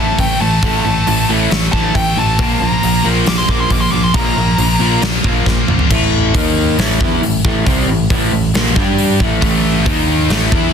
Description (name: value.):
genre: hard rock.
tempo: 136 BPM.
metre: 4/4.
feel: straight.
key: unclear.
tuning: A4 = 439 Hz.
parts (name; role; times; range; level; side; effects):
nasal lead guitar with a parked wah; melody; 0.0-5.0 s; G5 to D6; -18 LUFS; equal; overdrive, slapback echo.
heavy high-gain guitar; riff; 0.0-5.9, 9.4-10.7 s; A2 to E4; -20 LUFS; left 2 dB; distortion.
overdriven semi-hollow guitar; riff; 0.0-10.7 s; A2 to G4; -20 LUFS; left 14 dB; none.
overdriven semi-hollow guitar; riff; 0.0-10.7 s; A2 to G4; -19 LUFS; right 13 dB; none.
picked electric bass; bass; 0.0-10.7 s; A1 to G2; -19 LUFS; equal; none.
big rock drum kit; drums; 0.2-10.6 s; crash cymbal, hi-hat, kick drum, snare drum, toms; -17 LUFS; equal; none.
room: light reverb.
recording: dense, heavily limited modern master.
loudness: -12 LUFS.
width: side -7 dB against mid.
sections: 0.0-5.9 A section; 5.9-10.7 B section.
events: lead electric guitar solo 0.0-5.9; drum fill 5.5-5.9.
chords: 0.0 A5; 2.4 Bb5; 5.9 A5; 6.3 D#5; 6.8 Am; 8.8 G5; 9.2 A5; 9.9 D#5.